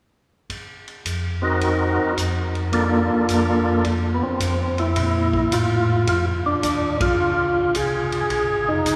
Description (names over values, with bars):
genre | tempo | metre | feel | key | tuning
soul jazz organ trio | 108 BPM | 4/4 | swing 67% on 8ths | Bb major | A4 = 442 Hz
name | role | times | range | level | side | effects
vintage drum kit | drums | 0.5-9.0 s | hi-hat, kick drum, ride cymbal | -32 LUFS | equal | none
tonewheel organ | bass | 1.1-9.0 s | F1 to Bb2 | -26 LUFS | equal | overdrive, chorus vibrato, stopped rotary speaker
percussive tonewheel organ | melody | 1.4-9.0 s | Bb3 to Bb4 | -22 LUFS | equal | slow rotary speaker, overdrive, chorus vibrato
room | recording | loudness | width
wet cathedral reverb, RT60 5.2 s | recorded in a church or concert hall, studio ambience | -21 LUFS | mono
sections
0.5-5.0 A section; 5.0-9.0 B section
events
band accent 6.9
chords
0.5 Ebm69/F; 5.0 Bbmaj7; 7.2 Db7